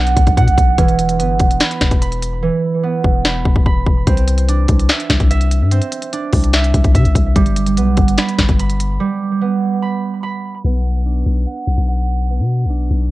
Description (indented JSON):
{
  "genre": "hip hop, trap",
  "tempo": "146 BPM",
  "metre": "4/4",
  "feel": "half-time",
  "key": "B phrygian",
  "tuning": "A4 = 440 Hz",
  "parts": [
    { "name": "concert harp", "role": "arpeggios", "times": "0.0-13.1 s", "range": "E3 to B5", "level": "-19 LUFS", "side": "right 5 dB", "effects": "cassette tape, analog delay" },
    { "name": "long sustained 808-style bass", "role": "bass", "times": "0.0-13.1 s", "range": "E1 to C3", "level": "-16 LUFS", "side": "left 1 dB", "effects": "none" },
    { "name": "trap drum kit", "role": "drums", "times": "0.1-13.0 s", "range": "finger snaps, hi-hat, kick drum, snare drum", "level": "-14 LUFS", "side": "left 1 dB", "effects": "none" }
  ],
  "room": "little or no reverb",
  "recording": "home recording on cassette, low-pass filter",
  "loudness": "-13 LUFS",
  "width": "side -17 dB against mid",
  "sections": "0.0-10.6 A section; 10.6-13.1 B section",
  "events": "hi-hats muted 2.4-4.1; break 9.0-10.6; filter sweep 10.6-13.1",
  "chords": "0.0 Bm; 0.8 E5; 4.1 Cadd9; 7.4 G; 10.6 Bm"
}